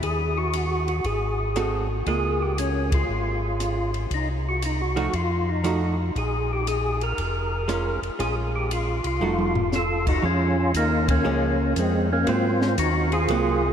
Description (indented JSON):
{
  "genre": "soul jazz organ trio",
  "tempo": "118 BPM",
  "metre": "4/4",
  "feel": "swing 67% on 8ths",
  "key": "Bb minor",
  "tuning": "A4 = 438 Hz",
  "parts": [
    { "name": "percussive tonewheel organ", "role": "melody", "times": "0.0-13.7 s", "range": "Ab3 to Bb4", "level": "-24 LUFS", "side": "equal", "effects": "slow rotary speaker, chorus vibrato" },
    { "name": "mellow tonewheel organ", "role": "bass", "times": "0.0-13.7 s", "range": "F1 to Ab2", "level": "-26 LUFS", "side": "equal", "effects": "chorus vibrato, stopped rotary speaker" },
    { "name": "compact cocktail drum kit", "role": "drums", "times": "0.0-13.5 s", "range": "crash cymbal, hi-hat, kick drum, ride cymbal, rim click, snare drum, toms", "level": "-31 LUFS", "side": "left 1 dB", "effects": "none" },
    { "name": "archtop guitar, miked and amplified", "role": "accompaniment", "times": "1.6-13.6 s", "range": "F3 to A4", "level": "-30 LUFS", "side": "right 4 dB", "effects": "none" }
  ],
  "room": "wet huge ambient reverb, RT60 7.7 s",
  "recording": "in a vast, echoing space",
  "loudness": "-21 LUFS",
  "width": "side -8 dB against mid",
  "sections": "0.0-10.2 A section; 10.2-13.7 B section",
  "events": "band accent 2.8, 11.0; drum fill 9.2-9.7",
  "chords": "0.0 Ebm; 1.0 Ab7b9; 2.1 Db6; 4.1 Cdim; 5.1 F7b9; 6.2 Bbm7; 9.2 F7b9; 10.2 Bbm7; 12.3 Ab9"
}